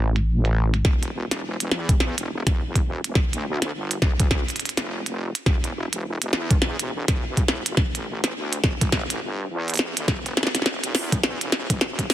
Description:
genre	glitch hop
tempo	104 BPM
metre	4/4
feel	swing 61% on 16ths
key	unclear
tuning	A4 = 441 Hz
part	wobble bass	bass	0.0-12.1 s	E1 to E2	-27 LUFS	equal	chorus, tube saturation, high-pass filter
part	glitchy drum kit	drums	0.2-12.1 s	hi-hat, snare drum	-24 LUFS	equal	low-pass filter on hats, small room ambience, soft clipping on snare, low-pass filter on snare
part	electronic kick drum	drums	0.8-12.1 s	none	-22 LUFS	equal	overdrive, small room ambience
room	light reverb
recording	dense, heavily limited modern master, high-pass filter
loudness	-21 LUFS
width	side -12 dB against mid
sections	0.8-12.1 A section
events	build-up 0.8-12.1; drum fill 0.8-12.1; filter sweep 0.8-12.1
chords	none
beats	0.27 | 0.85 1.43 2.00 2.58 | 3.16 3.73 4.31 4.89 | 5.46 6.04 6.62 7.20 | 7.77 8.35 8.93 9.50 | 10.08 10.66 11.23 11.81

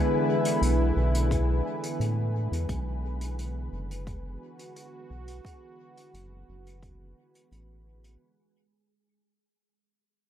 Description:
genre	ambient dub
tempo	87 BPM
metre	4/4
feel	straight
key	B dorian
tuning	A4 = 440 Hz
part	warm analog pad	sustained chords	0.0-8.2 s	D3 to B4	-31 LUFS	equal	chorus
part	wind-like tuned noise texture	texture	0.0-8.2 s	G#3 to G#4	-34 LUFS	left 2 dB	built-in reverb
part	hi-hat	drums	0.4-8.2 s	none	-41 LUFS	equal	dub echo
part	round analog bass	bass	0.6-8.2 s	F#1 to A2	-28 LUFS	equal	none
part	electronic kick drum	drums	1.3-7.0 s	none	-31 LUFS	equal	none
room	little or no reverb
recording	none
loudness	-25 LUFS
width	side -10 dB against mid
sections	0.0-8.2 A section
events	fade-out 0.0-8.2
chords	0.0 E7sus4; 2.7 Bm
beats	0.62 1.31 2.00 | 2.69 3.38 4.07 4.76 | 5.45 6.13 6.83 7.51

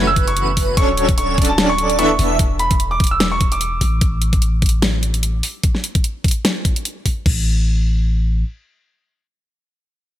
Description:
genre	future bass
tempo	148 BPM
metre	4/4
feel	swing 55% on 16ths, half-time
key	unclear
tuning	A4 = 441 Hz
part	airy dreamy lead	arpeggios	0.0-2.4 s	B4 to E5	-23 LUFS	right 1 dB	chorus, sidechain pumping
part	supersaw stab	riff	0.0-2.4 s	E3 to E5	-20 LUFS	right 1 dB	sidechain pumping, dub echo
part	long sustained 808-style bass	bass	0.0-8.4 s	D1 to A1	-19 LUFS	equal	sidechain pumping
part	bright concert grand piano	melody	0.1-3.7 s	A5 to E6	-21 LUFS	right 1 dB	sidechain pumping, dub echo
part	dubstep drum kit	drums	0.2-7.3 s	crash cymbal, hi-hat, snare drum	-21 LUFS	left 1 dB	small room ambience
part	electronic kick drum	drums	0.2-7.3 s	none	-17 LUFS	equal	small room ambience
room	digital ambience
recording	none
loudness	-15 LUFS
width	side -12 dB against mid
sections	0.0-7.3 A section; 7.3-10.2 B section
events	drop 0.0-7.3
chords	0.0 F#m7; 0.8 Dmaj7; 2.2 E7sus4; 3.8 N.C.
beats	0.37 | 0.77 1.18 1.58 1.99 | 2.39 2.80 3.20 3.61 | 4.01 4.42 4.83 5.23 | 5.64 6.04 6.45 6.85 | 7.26 7.66 8.07

